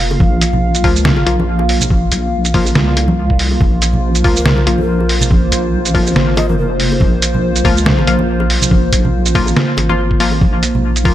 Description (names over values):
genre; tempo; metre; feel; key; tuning
deep dubstep; 141 BPM; 4/4; swing 56% on 16ths, half-time; unclear; A4 = 441 Hz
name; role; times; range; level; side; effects
dark analog pad; sustained chords; 0.0-11.1 s; Bb3 to F5; -19 LUFS; equal; chorus, phaser
deep soft wobble bass; bass; 0.0-11.1 s; F1 to Db2; -16 LUFS; equal; chorus
bongos and congas; percussion; 0.1-11.1 s; none; -21 LUFS; right 1 dB; none
electronic kick drum; drums; 0.2-11.1 s; none; -14 LUFS; equal; none
trip hop sampler-style drum kit; drums; 0.4-11.1 s; hi-hat, shaker, snare drum; -17 LUFS; right 1 dB; none
filtered dub chord stab; stabs; 0.8-11.1 s; F3 to F4; -21 LUFS; left 3 dB; chorus, dub echo
mellow long shakuhachi; melody; 4.4-6.7 s; Bb4 to Eb5; -27 LUFS; right 1 dB; dub echo
backwards swelling texture; texture; 10.4-11.1 s; none; barely audible; none; none
room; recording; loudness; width
light reverb; none; -11 LUFS; side -13 dB against mid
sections
0.0-11.1 A section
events
none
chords
0.0 Bb5